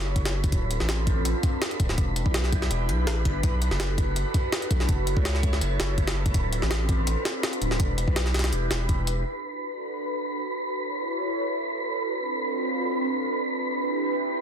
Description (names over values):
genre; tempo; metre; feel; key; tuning
drum and bass, jungle; 165 BPM; 4/4; straight; B minor; A4 = 445 Hz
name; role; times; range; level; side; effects
airy breathy pad; sustained chords; 0.0-14.4 s; C4 to C#5; -30 LUFS; right 1 dB; chorus, phaser
saturated sub bass; bass; 0.0-9.2 s; D1 to C#2; -26 LUFS; equal; none
wind-like tuned noise texture; texture; 0.0-14.4 s; B4 to B5; -32 LUFS; right 1 dB; built-in reverb
jungle sampler-style drum kit; drums; 0.2-9.2 s; hi-hat, kick drum, snare drum; -26 LUFS; equal; studio reverb
room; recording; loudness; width
light reverb; dense, heavily limited modern master; -24 LUFS; side -8 dB against mid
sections
0.0-9.3 A section; 9.3-14.4 B section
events
filter sweep on analog synth pad 9.3-14.4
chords
0.0 F#m7; 0.5 Dm7; 2.0 Em7; 3.4 Bm7; 4.9 F#m7; 6.3 Dm7; 7.8 Em7; 9.3 Bm7; 10.7 F#m7; 12.2 Dm7; 13.6 Em7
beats
0.16 | 0.53 0.89 1.25 1.62 | 1.98 2.34 2.71 3.07 | 3.44 3.80 4.16 4.53 | 4.89 5.25 5.62 5.98 | 6.34 6.71 7.07 7.43 | 7.80 8.16 8.53 8.89 | 9.25 9.62 9.98 10.34 | 10.71 11.07 11.44 11.80 | 12.16 12.53 12.89 13.25 | 13.62 13.98 14.34